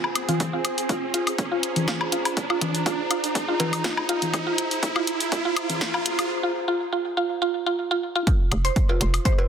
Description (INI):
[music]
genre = minimal techno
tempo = 122 BPM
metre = 4/4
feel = swing 53% on 16ths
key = F minor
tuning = A4 = 440 Hz
[part]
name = woodblock, congas and cowbell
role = percussion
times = 0.0-9.5 s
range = none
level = -29 LUFS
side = left 4 dB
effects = overdrive, tape echo
[part]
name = riser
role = sound effects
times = 0.0-6.3 s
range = none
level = -29 LUFS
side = right 3 dB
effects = none
[part]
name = pulsing gated texture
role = texture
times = 0.0-6.3 s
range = Ab4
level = -39 LUFS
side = right 6 dB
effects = chorus, built-in reverb, sidechain pumping
[part]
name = warbly tape-like pad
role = texture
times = 0.0-9.5 s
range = F4 to Bb5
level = -33 LUFS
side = equal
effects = chorus, built-in reverb, sidechain pumping
[part]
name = punchy analog drum machine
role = drums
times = 0.2-9.4 s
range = hi-hat, snare drum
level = -29 LUFS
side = equal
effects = none
[part]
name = mallet-like synth pluck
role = riff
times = 0.3-9.3 s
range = F4 to C5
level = -27 LUFS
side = right 1 dB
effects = wide subtle chorus, sidechain pumping, tape echo
[part]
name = electronic kick drum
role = drums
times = 0.4-9.4 s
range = none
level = -23 LUFS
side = equal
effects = high-pass filter on kick
[part]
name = hollow knocking FM bass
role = bass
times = 8.5-9.2 s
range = F1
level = -23 LUFS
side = equal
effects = sidechain pumping
[sound]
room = light reverb, digital ambience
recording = dense, heavily limited modern master, high-pass filter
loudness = -22 LUFS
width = side -8 dB against mid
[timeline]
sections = 0.0-8.3 A section; 8.3-9.5 B section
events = build-up 0.0-8.3; riser 0.0-6.3; filter sweep on synth arpeggio sound 0.0-8.3; drop 8.3-9.5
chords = 0.0 Fm; 8.3 F5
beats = | 0.40 0.89 1.39 1.88 | 2.37 2.86 3.35 3.84 | 4.34 4.83 5.32 5.81 | 6.30 6.79 7.29 7.78 | 8.27 8.76 9.25